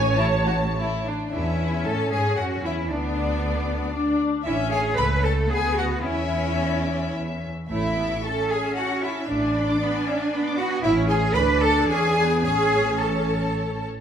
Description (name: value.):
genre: quick classical-period movement for string orchestra.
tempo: 103-118 BPM.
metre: 3/4.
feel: rubato.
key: A major.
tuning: A4 = 442 Hz.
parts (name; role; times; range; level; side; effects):
rich symphonic violin section; melody; 0.0-13.9 s; D4 to D6; -34 LUFS; left 5 dB; none.
rich chamber violin section; second line; 0.0-13.8 s; C#4 to B5; -29 LUFS; left 3 dB; none.
rich chamber viola section; accompaniment; 0.0-13.8 s; A3 to C#5; -28 LUFS; equal; none.
rich chamber double bass section; bass; 0.0-13.9 s; A1 to A2; -26 LUFS; right 1 dB; none.
rich symphonic cello section; bass; 0.0-13.8 s; A2 to B4; -25 LUFS; right 1 dB; none.
room: wet recital hall reverb, RT60 1.6 s.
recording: minimal, uncompressed stereo recording.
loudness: -21 LUFS.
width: side -8 dB against mid.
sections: 0.0-1.3 A section; 1.3-14.0 A section.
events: none.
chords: 0.0 A; 1.3 A/E; 2.9 Bm/D; 4.5 A; 5.5 Bm/D; 6.0 C#m/E; 7.7 A; 9.3 E7/A (rootless); 10.8 A; 11.3 Bm/D; 11.9 E7; 12.4 A.